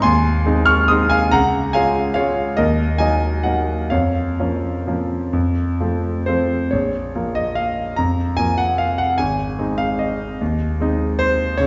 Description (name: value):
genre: classical, piano waltz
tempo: 123-161 BPM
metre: 3/4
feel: rubato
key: Bb minor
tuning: A4 = 440 Hz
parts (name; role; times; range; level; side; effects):
- clear concert grand piano; solo; 0.0-11.7 s; Ab1 to F6; -19 LUFS; equal; none
room: wet recital hall reverb, RT60 1.6 s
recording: heard from further back in the room, nothing above 7.7 kHz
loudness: -19 LUFS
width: mono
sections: 0.0-6.7 A section; 6.7-11.7 B section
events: none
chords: 0.0 Ab; 1.3 Db; 2.6 Ebm; 3.9 Bbm/F; 5.3 F; 6.7 Bbm; 9.2 Ab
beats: | 0.04 0.46 0.90 | 1.33 1.75 2.17 | 2.59 3.01 3.45 | 3.92 4.39 4.88 | 5.35 5.81 6.27 | 6.72 7.15 7.57 | 7.97 8.37 8.79 | 9.19 9.59 10.00 | 10.40 10.80 11.20 | 11.59